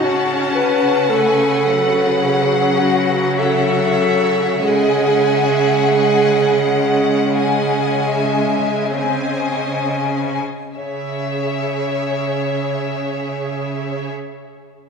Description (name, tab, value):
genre	classical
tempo	31-56 BPM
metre	4/4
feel	rubato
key	C# minor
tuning	A4 = 442 Hz
part	rich studio violin section	melody	0.0-14.1 s	E5 to G#5	-24 LUFS	left 4 dB	none
part	clear chamber violin section	second line	0.0-14.1 s	B4 to A5	-24 LUFS	left 3 dB	none
part	warm clarinet	second line	0.0-14.1 s	F#4 to C#5	-19 LUFS	right 1 dB	none
part	rich symphonic viola section	accompaniment	0.0-14.1 s	F#3 to G#4	-24 LUFS	right 1 dB	none
part	clear studio cello section	bass	0.0-14.1 s	C#3	-21 LUFS	right 2 dB	none
room	wet concert hall reverb, RT60 2.3 s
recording	minimal, uncompressed stereo recording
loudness	-15 LUFS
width	side -5 dB against mid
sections	0.0-10.8 A section; 10.8-14.9 B section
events	slowing down 0.0-10.8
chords	0.0 F#m/C#; 4.6 G#7/C#; 10.8 C#m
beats	| 0.02 1.11 2.22 3.40 | 4.63 5.96 7.37 8.97 | 10.77 12.40 14.08